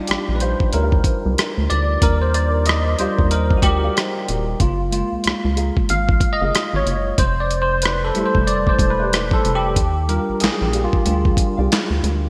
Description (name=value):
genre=R&B, neo-soul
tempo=93 BPM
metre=4/4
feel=swing 60% on 16ths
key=Eb major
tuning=A4 = 440 Hz
part: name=bell-like tine electric piano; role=accompaniment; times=0.0-12.3 s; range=G3 to F5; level=-23 LUFS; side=equal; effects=ensemble chorus
part: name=rubbery square bass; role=bass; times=0.1-12.3 s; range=Eb1 to Eb2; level=-23 LUFS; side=equal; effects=none
part: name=dusty soul sampler-style drum kit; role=drums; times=0.1-12.2 s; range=handclaps, hi-hat, kick drum, rim click, snare drum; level=-22 LUFS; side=equal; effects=overdrive, gated reverb
part: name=nylon-string guitar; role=second line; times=0.4-11.7 s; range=G4 to F5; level=-33 LUFS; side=equal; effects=none
room=moderate lush hall reverb, RT60 2.0 s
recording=bright 1980s-style digital production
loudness=-19 LUFS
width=mono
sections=0.0-12.3 A section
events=tine electric piano solo 0.0-12.3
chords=0.0 Ebmaj9; 4.6 Gbmaj9; 7.2 Fmaj9; 9.8 Ebmaj9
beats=0.09 0.73 1.38 | 2.02 2.67 3.31 3.96 | 4.60 5.25 5.89 6.54 | 7.18 7.83 8.47 9.12 | 9.76 10.41 11.05 11.70